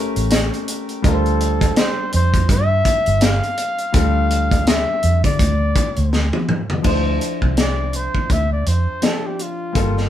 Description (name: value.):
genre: lush 1970s-style soul.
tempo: 83 BPM.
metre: 4/4.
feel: swing 58% on 16ths.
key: D minor.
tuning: A4 = 437 Hz.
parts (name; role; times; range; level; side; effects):
clear concert grand piano; accompaniment; 0.0-10.1 s; F3 to E5; -26 LUFS; left 2 dB; none.
vintage muted fingered electric bass; bass; 0.2-10.1 s; G1 to D3; -18 LUFS; equal; none.
tight funk drum kit; drums; 0.2-10.0 s; crash cymbal, hi-hat, kick drum, snare drum, toms; -19 LUFS; equal; none.
breathy flugelhorn; melody; 1.1-10.1 s; F4 to F5; -22 LUFS; left 1 dB; none.
room: light reverb.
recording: band playing live in one room.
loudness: -16 LUFS.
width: side -11 dB against mid.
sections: 0.0-6.8 A section; 6.8-10.1 B section.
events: drum fill 6.1-6.8; flugelhorn solo 6.8-10.1.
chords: 0.0 A7b9; 1.0 Dm11; 6.8 Dm9.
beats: 0.32 | 1.04 1.77 2.49 3.22 | 3.94 4.67 5.39 6.12 | 6.85 7.57 8.30 9.03 | 9.75.